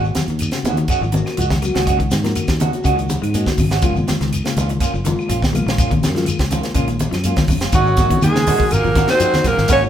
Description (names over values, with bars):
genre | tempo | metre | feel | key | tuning
afrobeat | 123 BPM | 4/4 | straight | Ab mixolydian | A4 = 440 Hz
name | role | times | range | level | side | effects
reed electric piano | accompaniment | 0.0-9.9 s | Ab3 to Gb4 | -26 LUFS | left 2 dB | phaser
clean electric guitar | arpeggios | 0.0-9.9 s | Db3 to Ab3 | -26 LUFS | left 7 dB | none
clean electric guitar | stabs | 0.0-9.8 s | Eb3 to Gb4 | -24 LUFS | right 5 dB | none
fingered electric bass | bass | 0.0-9.9 s | Gb1 to Ab2 | -21 LUFS | equal | none
shekere | percussion | 0.0-9.9 s | none | -28 LUFS | left 2 dB | none
tight funk drum kit | drums | 0.1-9.8 s | hi-hat, kick drum, snare drum | -21 LUFS | equal | none
congas | percussion | 0.2-9.6 s | none | -23 LUFS | equal | none
claves | percussion | 0.4-9.8 s | none | -36 LUFS | left 4 dB | none
growling alto saxophone | melody | 7.7-9.8 s | Gb4 to Db5 | -17 LUFS | right 1 dB | none
raspy baritone saxophone | second line | 7.7-9.8 s | Gb2 to Db3 | -29 LUFS | left 6 dB | none
clear trumpet | second line | 7.8-9.8 s | Gb3 to Db4 | -26 LUFS | right 4 dB | none
room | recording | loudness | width
moderate stone room reverb, RT60 1.0 s | band playing live in one room | -15 LUFS | side -10 dB against mid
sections
0.0-7.7 A section; 7.7-9.9 B section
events
none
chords
0.0 Ab7sus4; 3.8 Gbmaj7; 7.7 Ab7sus4